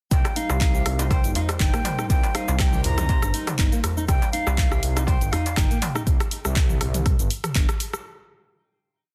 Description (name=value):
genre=afro house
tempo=121 BPM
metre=4/4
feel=swing 54% on 16ths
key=C minor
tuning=A4 = 439 Hz
part: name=breathy concert flute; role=melody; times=0.1-6.1 s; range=F5 to Bb5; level=-33 LUFS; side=equal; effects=delay
part: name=warm analog pad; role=sustained chords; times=0.1-6.0 s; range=G3 to C5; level=-39 LUFS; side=equal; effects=chorus, sidechain pumping
part: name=nylon-string guitar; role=arpeggios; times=0.1-6.0 s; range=Bb3 to C5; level=-35 LUFS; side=equal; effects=sidechain pumping, delay
part: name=dark detuned saw bass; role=bass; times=0.1-7.7 s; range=G1 to C2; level=-28 LUFS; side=equal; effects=sidechain pumping
part: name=deep house drum kit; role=drums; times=0.1-8.0 s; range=cabasa, handclaps, hi-hat, rim click, toms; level=-30 LUFS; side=equal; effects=studio reverb
part: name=electronic kick drum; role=drums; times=0.1-7.7 s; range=none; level=-24 LUFS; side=equal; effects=studio reverb
part: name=darbuka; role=percussion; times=0.1-5.9 s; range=none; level=-32 LUFS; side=equal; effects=none
room=little or no reverb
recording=dense, heavily limited modern master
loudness=-22 LUFS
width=mono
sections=0.1-8.1 drop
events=drop 0.1-8.1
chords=0.1 Cm7